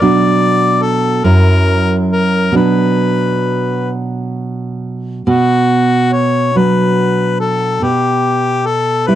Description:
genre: romantic duo for harmonica and classical guitar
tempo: 44-50 BPM (dotted quarters)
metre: 6/8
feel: rubato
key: B minor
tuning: A4 = 441 Hz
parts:
  - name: warm harmonica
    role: melody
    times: 0.0-9.2 s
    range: F#4 to D5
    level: -15 LUFS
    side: left 4 dB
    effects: none
  - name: nylon-string guitar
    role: accompaniment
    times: 0.0-9.2 s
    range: F#2 to E4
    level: -13 LUFS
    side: right 2 dB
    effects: none
room: small room ambience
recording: dry, close 1970s-style studio recording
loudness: -11 LUFS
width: side -12 dB against mid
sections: 0.0-5.3 A section; 5.3-9.2 B section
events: none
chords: 0.0 Bm; 1.3 F#7; 2.6 Bm; 7.8 Em/B (rootless)

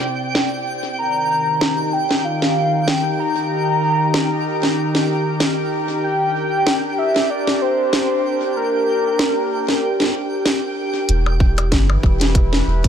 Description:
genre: IDM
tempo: 95 BPM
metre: 4/4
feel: swing 56% on 16ths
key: unclear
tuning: A4 = 437 Hz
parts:
  - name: warbly tape-like pad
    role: sustained chords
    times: 0.0-12.9 s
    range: C3 to B5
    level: -22 LUFS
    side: equal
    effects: chorus, built-in reverb
  - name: glitchy drum kit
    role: drums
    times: 0.0-12.9 s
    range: hi-hat, percussion blips, snare drum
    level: -21 LUFS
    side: left 1 dB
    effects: low-pass filter on snare, low-pass filter on hats, low-pass filter on perc, low-pass filter on room, ping-pong delay
  - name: twinkling granular texture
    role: texture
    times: 0.0-11.1 s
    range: G5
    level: -30 LUFS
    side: right 4 dB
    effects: built-in reverb
  - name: warm velvety synth lead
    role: melody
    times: 1.0-10.4 s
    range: Bb4 to A#5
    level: -20 LUFS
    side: equal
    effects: chorus, ping-pong delay
  - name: warm sub bass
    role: bass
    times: 11.1-12.9 s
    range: E1 to G1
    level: -17 LUFS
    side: equal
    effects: none
  - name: electronic kick drum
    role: drums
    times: 11.4-12.9 s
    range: none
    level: -16 LUFS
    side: equal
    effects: none
room: light reverb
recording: none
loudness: -16 LUFS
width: side -8 dB against mid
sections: 0.0-11.1 A section; 11.1-12.9 B section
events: none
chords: 0.0 Cadd9; 1.0 D#; 6.0 Gm; 11.1 Em

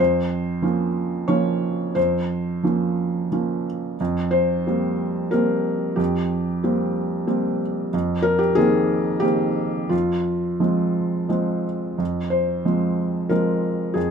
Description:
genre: neoclassical minimalist piano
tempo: 91 BPM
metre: 3/4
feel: rubato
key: F minor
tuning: A4 = 441 Hz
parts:
  - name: felt-muted upright piano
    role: solo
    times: 0.0-14.1 s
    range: F2 to Db5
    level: -20 LUFS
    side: right 1 dB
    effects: none
room: light reverb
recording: minimal, uncompressed stereo recording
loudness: -20 LUFS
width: side -6 dB against mid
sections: 0.0-12.0 A section; 12.0-14.1 A section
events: none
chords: 0.0 Bbmadd9/F; 4.0 C7sus4/F; 7.9 Abadd9/F; 9.9 Fm

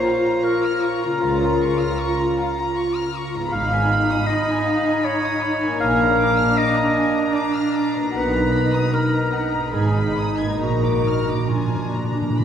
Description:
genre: classical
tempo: 67-79 BPM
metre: 3/4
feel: rubato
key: Bb minor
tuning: A4 = 442 Hz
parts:
  - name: warm symphonic violin section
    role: melody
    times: 0.0-12.4 s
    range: Bb5 to Cb6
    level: -31 LUFS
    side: left 3 dB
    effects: none
  - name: clear clarinet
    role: second line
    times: 0.0-12.4 s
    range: D4 to F5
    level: -23 LUFS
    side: equal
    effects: none
  - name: warm symphonic violin section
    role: second line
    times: 0.0-12.4 s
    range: F5 to Ab6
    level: -31 LUFS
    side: left 2 dB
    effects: none
  - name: dark symphonic viola section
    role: accompaniment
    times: 0.0-12.4 s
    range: D4 to F4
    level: -23 LUFS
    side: equal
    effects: none
  - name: concert harp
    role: arpeggios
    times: 0.0-12.4 s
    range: Ab2 to Bb4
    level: -28 LUFS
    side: left 6 dB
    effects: none
  - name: warm studio double bass section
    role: bass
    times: 1.2-11.3 s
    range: Ab1 to Db2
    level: -27 LUFS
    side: right 3 dB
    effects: none
  - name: warm symphonic cello section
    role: bass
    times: 1.2-11.3 s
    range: Ab2 to Db3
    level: -28 LUFS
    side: right 1 dB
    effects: none
  - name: timpani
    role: percussion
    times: 10.6-12.4 s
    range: Bb2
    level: -26 LUFS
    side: right 1 dB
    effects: none
room: wet cathedral reverb, RT60 5.3 s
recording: recorded in a church or concert hall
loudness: -18 LUFS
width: side -8 dB against mid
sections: 0.0-12.4 A section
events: timpani fill 10.6-12.4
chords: 0.0 Bbm; 1.2 Bbm/Db; 3.5 Fm7b5/Ab; 5.8 Bb7; 8.1 Bmaj7; 9.7 Abm; 10.6 Bb

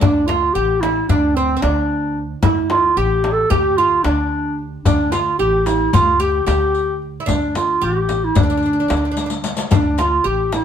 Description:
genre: Turkish makam ensemble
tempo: 223 BPM (eighths)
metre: 9/8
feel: straight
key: D makam ussak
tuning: A4 = 440 Hz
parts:
  - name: dark clarinet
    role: melody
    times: 0.0-10.6 s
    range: C4 to A4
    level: -17 LUFS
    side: equal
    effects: none
  - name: oud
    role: second line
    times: 0.0-10.6 s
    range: C4 to G4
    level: -23 LUFS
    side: right 5 dB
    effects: none
  - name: upright bass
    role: bass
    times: 0.0-10.6 s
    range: A1 to D2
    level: -23 LUFS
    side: equal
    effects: none
  - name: darbuka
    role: percussion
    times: 0.0-10.6 s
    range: none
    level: -22 LUFS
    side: left 3 dB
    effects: none
  - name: frame drum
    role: percussion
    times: 0.0-10.6 s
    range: none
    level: -22 LUFS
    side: left 3 dB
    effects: none
  - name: riq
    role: percussion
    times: 4.9-10.6 s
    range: none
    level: -28 LUFS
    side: left 5 dB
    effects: none
room: moderate studio reverb, RT60 0.7 s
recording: band playing live in one room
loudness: -15 LUFS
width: side -8 dB against mid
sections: 0.0-9.7 A section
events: drum fill 9.2-9.7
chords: none

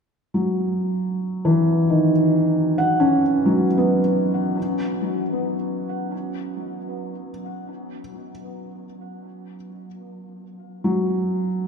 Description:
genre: ambient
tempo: 58 BPM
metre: 4/4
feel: straight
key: unclear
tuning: A4 = 440 Hz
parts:
  - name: felt-muted upright piano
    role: solo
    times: 0.3-11.7 s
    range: D#3 to F#5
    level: -20 LUFS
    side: equal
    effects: ping-pong delay
room: wet concert hall reverb, RT60 2.5 s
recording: none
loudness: -19 LUFS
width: side -6 dB against mid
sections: 0.0-11.7 A section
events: none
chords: 0.0 F#7sus4; 4.6 B5/F#

